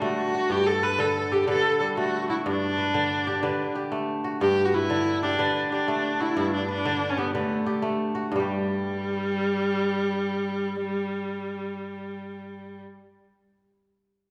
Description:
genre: west african traditional.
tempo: 123 BPM (dotted quarters).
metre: 12/8.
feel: straight.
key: G major.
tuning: A4 = 441 Hz.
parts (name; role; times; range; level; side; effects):
rich viola; melody; 0.0-12.8 s; G3 to B4; -28 LUFS; equal; none.
kora; arpeggios; 0.0-12.9 s; G2 to B4; -30 LUFS; equal; none.
room: wet recital hall reverb, RT60 1.7 s.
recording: recorded in a church or concert hall.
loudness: -26 LUFS.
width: mono.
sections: 0.0-8.3 A section; 8.3-12.2 B section.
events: none.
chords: 0.0 D; 0.5 G; 1.5 D; 2.5 G; 3.4 D; 4.4 G; 5.4 D; 6.4 G; 7.3 D; 8.3 N.C..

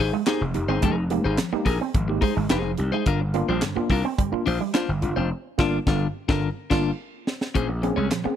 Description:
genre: funk.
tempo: 107 BPM.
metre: 4/4.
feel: straight.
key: unclear.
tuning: A4 = 440 Hz.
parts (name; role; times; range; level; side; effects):
clean electric guitar; accompaniment; 0.0-8.3 s; Db4 to Db5; -27 LUFS; left 8 dB; none.
tine electric piano; stabs; 0.0-8.4 s; G2 to Ab4; -28 LUFS; right 2 dB; overdrive, medium stereo tremolo.
gritty slap bass; bass; 0.0-8.3 s; F1 to C2; -26 LUFS; equal; overdrive.
electric guitar with an envelope filter; riff; 0.1-8.3 s; G3 to C4; -30 LUFS; right 10 dB; spring reverb.
crisp fusion drum kit; drums; 0.3-8.2 s; crash cymbal, handclaps, hi-hat, kick drum, snare drum; -26 LUFS; equal; none.
room: small room ambience.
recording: dry, close 1970s-style studio recording.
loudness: -21 LUFS.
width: side -9 dB against mid.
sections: 0.0-7.5 A section.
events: band accent 5.3-7.5; drum fill 7.0-7.5.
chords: 0.0 Fm11; 3.1 Gm7; 7.5 Bbm9.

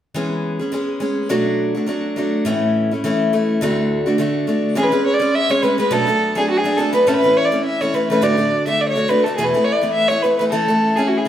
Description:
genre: celtic folk, Celtic reel.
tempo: 209 BPM.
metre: 4/4.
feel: swing 55% on 8ths.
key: E mixolydian.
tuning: A4 = 440 Hz.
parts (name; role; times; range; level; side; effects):
picked steel-string acoustic guitar; accompaniment; 0.1-11.3 s; D2 to G#4; -18 LUFS; left 1 dB; none.
rich fiddle; melody; 4.8-11.3 s; F#4 to E5; -16 LUFS; right 1 dB; none.
room: wet studio reverb, RT60 0.9 s.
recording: heard from further back in the room.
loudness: -15 LUFS.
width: side -10 dB against mid.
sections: 0.2-4.8 A section; 4.8-11.3 B section.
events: none.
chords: 0.2 E6; 1.3 Bm7; 2.5 A; 3.6 D; 4.8 E6; 5.9 Bm7; 7.1 A; 8.2 D; 9.4 Esus4; 10.5 A/E.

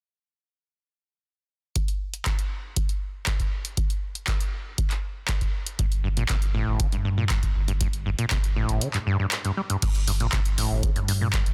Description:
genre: acid house.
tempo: 119 BPM.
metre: 4/4.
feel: straight.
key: G minor.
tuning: A4 = 439 Hz.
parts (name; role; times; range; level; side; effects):
electronic kick drum; drums; 1.8-11.4 s; none; -29 LUFS; equal; none.
punchy analog drum machine; drums; 1.8-11.5 s; crash cymbal, handclaps, hi-hat; -33 LUFS; equal; none.
acid bass, saw; riff; 5.8-11.3 s; G2 to G3; -30 LUFS; equal; overdrive, sidechain pumping, delay.
warm sub bass; bass; 5.8-11.5 s; G1 to G2; -29 LUFS; equal; tube saturation, sidechain pumping.
room: little or no reverb.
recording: dense, heavily limited modern master.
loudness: -26 LUFS.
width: mono.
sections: 1.8-9.8 A section; 9.8-11.5 B section.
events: kick drops out 8.8-9.8.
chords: none.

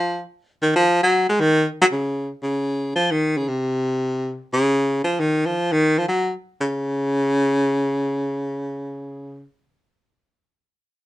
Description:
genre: jazz.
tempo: free time.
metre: none.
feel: none.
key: Db major.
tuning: A4 = 439 Hz.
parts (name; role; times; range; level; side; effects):
clear baritone saxophone; solo; 0.0-9.5 s; C3 to Ab3; -19 LUFS; equal; none.
room: light reverb.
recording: minimal, uncompressed stereo recording.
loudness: -19 LUFS.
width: side -16 dB against mid.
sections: 0.0-2.4 A section; 2.4-6.6 B section; 6.6-8.7 C section.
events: none.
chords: none.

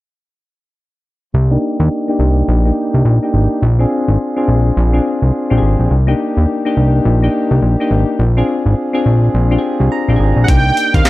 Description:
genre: R&B, new jack swing.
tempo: 105 BPM.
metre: 4/4.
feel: swing 60% on 16ths.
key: C minor.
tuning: A4 = 440 Hz.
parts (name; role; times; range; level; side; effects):
fat analog bass; bass; 1.3-11.0 s; Ab1 to Eb2; -12 LUFS; equal; none.
soft electric-piano-like synth keys; accompaniment; 1.5-11.1 s; Bb3 to Bb5; -16 LUFS; left 1 dB; chorus, tremolo, low-pass filter.
wide unison lead; melody; 10.4-11.1 s; F5 to G5; -15 LUFS; right 2 dB; none.
breakbeat sampler-style drum kit; drums; 10.5-11.1 s; handclaps, hi-hat, kick drum, snare drum; -12 LUFS; equal; none.
room: digital ambience.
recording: none.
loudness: -11 LUFS.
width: side -18 dB against mid.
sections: 1.3-10.5 A section.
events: filter sweep on synth keys 1.3-10.5; synth keys fill 9.6-10.5.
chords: 1.3 Cm7; 3.6 Bb7; 5.9 Cm7; 8.2 Bb7; 10.5 Cm7.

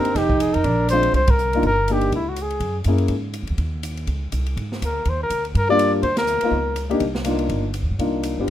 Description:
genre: jazz, small-group swing and bop.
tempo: 245 BPM.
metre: 4/4.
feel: swing 57% on 8ths.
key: C minor.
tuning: A4 = 440 Hz.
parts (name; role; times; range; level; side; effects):
mellow trumpet; melody; 0.0-2.8, 4.9-6.9 s; E4 to D5; -21 LUFS; left 1 dB; none.
breathy alto saxophone; second line; 0.0-1.0 s; C4 to Eb4; -22 LUFS; right 2 dB; none.
warm concert grand piano; accompaniment; 0.0-3.1, 5.7-8.5 s; G3 to G#4; -22 LUFS; left 3 dB; none.
upright bass; bass; 0.0-8.5 s; F1 to Ab2; -24 LUFS; right 1 dB; none.
swinging big-band drum kit; drums; 0.0-8.5 s; hi-hat, kick drum, ride cymbal, snare drum; -28 LUFS; equal; none.
room: moderate small room reverb, RT60 0.5 s.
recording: minimal, uncompressed stereo recording.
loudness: -18 LUFS.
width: side -12 dB against mid.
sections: 0.0-1.1 A section; 1.1-8.5 B section.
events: band accent 1.3, 6.2.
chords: 0.2 Fsus2; 0.7 Bb7; 1.1 Cm9; 2.1 Db5; 2.6 F#9; 3.1 Ab5; 4.1 Db5; 5.1 Ebmaj7; 6.0 Cm11/D; 6.5 Dbsus2; 7.0 Cm11.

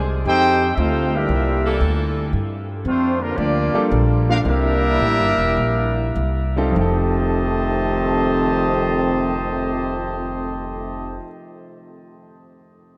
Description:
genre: jazz.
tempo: 98-115 BPM.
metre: 4/4.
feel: swing 69% on 8ths.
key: F mixolydian.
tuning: A4 = 440 Hz.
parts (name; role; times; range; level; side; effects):
mellow trumpet section; melody; 0.0-11.2 s; G3 to A5; -25 LUFS; equal; none.
mellow trombone section; second line; 0.0-11.2 s; F2 to G4; -25 LUFS; equal; none.
warm saxophone section; sustained chords; 0.0-2.3 s; D3 to A4; -35 LUFS; equal; none.
upright bass; bass; 0.0-11.2 s; E1 to G2; -25 LUFS; equal; none.
clear baby grand piano; accompaniment; 3.7-11.3 s; F2 to Bb4; -28 LUFS; equal; none.
room: wet cathedral reverb, RT60 6.0 s.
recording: in a vast, echoing space.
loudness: -20 LUFS.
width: mono.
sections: 0.0-2.3 A section; 2.3-6.8 B section; 6.8-11.7 C section.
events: slowing down 2.3-6.8.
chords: 0.2 F13; 1.3 C13; 2.3 Gm7; 4.5 C9; 6.8 F9.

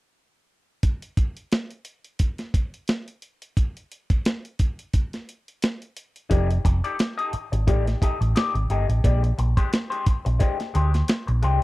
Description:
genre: funk.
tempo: 88 BPM.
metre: 4/4.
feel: swing 56% on 16ths.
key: F mixolydian.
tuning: A4 = 443 Hz.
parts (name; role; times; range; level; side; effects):
breakbeat sampler-style drum kit; drums; 0.8-11.6 s; hi-hat, kick drum, snare drum; -22 LUFS; equal; none.
electric guitar through a small old amp; accompaniment; 6.3-11.6 s; Ab3 to Eb5; -28 LUFS; left 5 dB; wah, spring reverb.
hollow-body short-scale fingered electric bass; bass; 6.3-11.6 s; F1 to D2; -21 LUFS; equal; none.
room: little or no reverb.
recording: dry, close 1970s-style studio recording.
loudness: -21 LUFS.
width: side -18 dB against mid.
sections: 0.8-11.6 A section.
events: none.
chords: 0.8 N.C.; 6.3 F13; 9.0 Bb13.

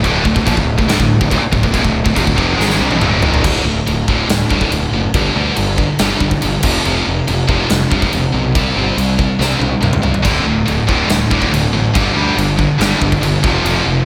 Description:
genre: heavy metal.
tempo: 141 BPM.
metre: 4/4.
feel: straight.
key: D minor.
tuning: A4 = 439 Hz.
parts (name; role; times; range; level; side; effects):
high-gain distorted guitar; riff; 0.0-14.1 s; D2 to C4; -19 LUFS; equal; distortion.
scooped high-gain guitar; riff; 0.0-3.4, 10.2-14.1 s; D2 to G#3; -19 LUFS; equal; distortion, slapback echo.
fuzz picked electric bass; bass; 0.0-14.0 s; D1 to D2; -22 LUFS; equal; overdrive.
big rock drum kit; drums; 0.0-13.8 s; crash cymbal, kick drum, snare drum, splash cymbal, toms; -20 LUFS; equal; none.
room: light reverb.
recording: none.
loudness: -14 LUFS.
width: mono.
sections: 0.0-3.4 A section; 3.4-14.1 B section.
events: drum fill 2.6-3.4, 9.4-10.2.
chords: 0.0 Dm; 3.4 D5; 5.1 G5; 6.6 F5; 8.5 C5; 10.2 D5; 11.9 G5; 13.4 F5.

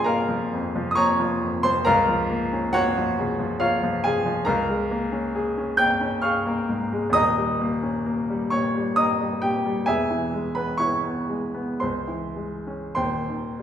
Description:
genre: classical, romantic nocturne for solo piano.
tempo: 48-70 BPM.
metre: 3/4.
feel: rubato.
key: unclear.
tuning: A4 = 439 Hz.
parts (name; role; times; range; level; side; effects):
clear baby grand piano; solo; 0.0-13.6 s; Eb1 to G6; -21 LUFS; equal; none.
room: wet recital hall reverb, RT60 1.3 s.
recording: recorded in a church or concert hall.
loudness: -21 LUFS.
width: side -9 dB against mid.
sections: 0.0-13.6 A section.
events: none.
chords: 0.0 Bbm; 1.9 Bbm/Db; 4.5 Bbm7/Db; 7.1 Eb7; 9.9 E; 11.8 Dbm; 13.0 Eb.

